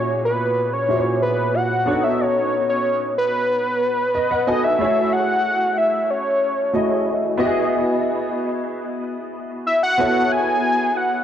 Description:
pop; 92 BPM; 4/4; straight; A4 = 439 Hz
fat analog lead; melody; 0.0-11.2 s; B4 to G#5; -19 LUFS; equal
clear baby grand piano; accompaniment; 0.0-11.2 s; A#2 to G#5; -21 LUFS; equal; ensemble chorus
moderate plate reverb, RT60 2.8 s; dark, warm production, nothing above 10.5 kHz; -17 LUFS; side -9 dB against mid
0.0-4.8 A section; 4.8-11.2 B section
grand piano fill 3.8-4.8
0.0 F#7; 1.9 B9; 4.8 F#m9; 7.4 Emaj7; 10.0 B9sus4
0.24 0.89 1.54 | 2.19 2.84 3.49 4.14 | 4.79 5.44 6.09 6.74 | 7.39 8.04 8.69 9.34 | 9.99 10.64

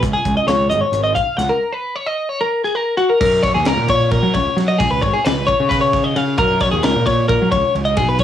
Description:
math rock and midwest emo; 265 BPM (eighths); 7/8; straight; F# major; A4 = 440 Hz
twelve-string electric guitar; arpeggios; 0.0-8.2 s; F#4 to F#5; -16 LUFS; left 2 dB; cassette tape
fuzz picked electric bass; bass; 0.0-8.2 s; G#1 to F#3; -19 LUFS; equal; overdrive
crisp fusion drum kit; drums; 0.0-8.2 s; crash cymbal, hi-hat, kick drum, ride cymbal, snare drum; -22 LUFS; equal; cassette tape
moderate booth ambience, RT60 0.2 s; home recording on cassette, small room ambience; -14 LUFS; side -10 dB against mid
0.0-3.2 A section; 3.2-8.2 B section
break 1.6-3.2
0.0 C#; 1.6 D#m7; 3.2 F#6; 4.8 C#7; 6.4 F#6
| 0.03 0.25 0.48 0.71 0.94 1.16 1.39 | 1.62 1.84 2.07 2.30 2.52 2.75 2.98 | 3.20 3.43 3.66 3.88 4.11 4.34 4.56 | 4.79 5.02 5.24 5.47 5.70 5.92 6.15 | 6.38 6.60 6.83 7.05 7.28 7.51 7.73 | 7.96 8.19

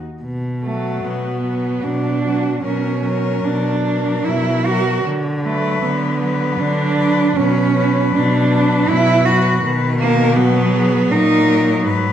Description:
classical, lyrical piece for cello ensemble; 68-82 BPM; 3/4; rubato; B minor; A4 = 441 Hz
rich cello; melody; 0.0-12.1 s; F#4 to Cb5; -24 LUFS; left 8 dB
rich cello; second line; 0.0-11.9 s; A3 to F#4; -18 LUFS; right 3 dB
rich cello; bass; 0.0-12.1 s; Ab2 to D3; -20 LUFS; equal
clear cello; accompaniment; 0.6-12.1 s; D#3 to F#3; -23 LUFS; left 1 dB
wet recital hall reverb, RT60 1.4 s; dark, warm production; -14 LUFS; side -10 dB against mid
0.2-12.1 A section
0.2 Bm; 5.0 Bm/D; 7.4 Bm; 9.6 Bmaj7
| 0.24 1.05 1.85 | 2.64 3.44 4.25 | 5.05 5.83 6.60 | 7.37 8.14 8.90 | 9.63 10.37 11.11 | 11.86

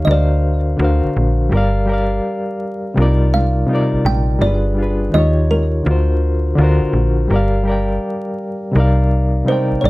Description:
lo-fi hip hop; 83 BPM; 4/4; swing 66% on 16ths; C minor; A4 = 438 Hz
kalimba; melody; 0.0-9.9 s; Bb4 to G5; -21 LUFS; right 2 dB; low-pass filter
reed electric piano; accompaniment; 0.0-9.9 s; C3 to G5; -18 LUFS; left 1 dB; fast tremolo, low-pass filter, plate reverb
slap-like FM bass; bass; 0.0-9.9 s; G1 to Eb2; -16 LUFS; equal
light reverb; vinyl crackle; -14 LUFS; side -20 dB against mid
0.0-9.9 A section
0.1 D7alt; 1.5 Gm7; 3.0 Cm11; 4.4 G7b9; 5.1 Eb9; 5.9 D7alt; 7.3 Gm7; 8.7 Cm11
| 0.07 0.80 1.52 2.24 | 2.96 3.69 4.41 5.13 | 5.86 6.58 7.30 8.03 | 8.75 9.47

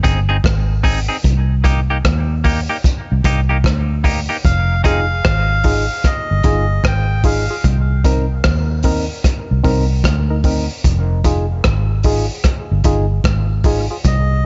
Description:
dub reggae; 75 BPM; 4/4; swing 64% on 16ths; F dorian; A4 = 440 Hz
semi-hollow electric guitar; accompaniment; 0.0-5.0 s; Bb3 to Ab4; -24 LUFS; equal; dub echo
vintage muted fingered electric bass; bass; 0.0-14.5 s; F1 to Eb2; -19 LUFS; equal
crunchy breakbeat drum kit; drums; 0.0-14.3 s; hi-hat, kick drum, rim click; -20 LUFS; equal
melodica; melody; 4.4-7.7, 14.1-14.5 s; Eb5 to G5; -24 LUFS; equal; dub echo
percussive organ stab; stabs; 4.8-14.0 s; C4 to Bb4; -25 LUFS; equal; chorus, dub echo
small room ambience; nothing above 7.7 kHz; -16 LUFS; mono
0.0-14.5 A section
break 0.0-4.4
0.0 Fm7 (rootless); 1.2 Cm7; 4.4 Fm7; 7.6 Cm7; 10.8 Fm7
0.44 | 1.24 2.04 2.84 3.64 | 4.44 5.24 6.04 6.84 | 7.64 8.44 9.24 10.05 | 10.85 11.65 12.45 13.25 | 14.05

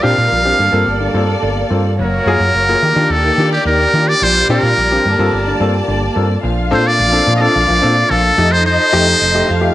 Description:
disco; 108 BPM; 4/4; straight; Bb major; A4 = 440 Hz
trumpet with metal mute; melody; 0.0-9.7 s; G4 to F5; -14 LUFS; equal; slapback echo
dark studio string section; second line; 0.0-9.7 s; G3 to A5; -20 LUFS; equal
warm concert grand piano; accompaniment; 0.0-9.7 s; G2 to A4; -19 LUFS; left 3 dB
mellow French horn section; sustained chords; 0.0-9.7 s; Eb3 to F5; -23 LUFS; right 2 dB
hollow-body short-scale fingered electric bass; bass; 0.0-9.7 s; F1 to Eb3; -17 LUFS; equal
light reverb, small room ambience; nothing above 10.9 kHz; -11 LUFS; side -14 dB against mid
0.0-6.4 A section; 6.4-9.7 B section
0.0 Bb69; 0.6 Gm11; 2.0 Gbmaj7; 2.8 Ebmaj7; 4.2 Bb69; 5.0 Gm11; 6.4 Bbmaj7; 8.4 F7
0.32 0.87 1.43 | 1.99 2.54 3.10 3.66 | 4.21 4.77 5.32 5.88 | 6.43 6.99 7.54 8.10 | 8.65 9.21

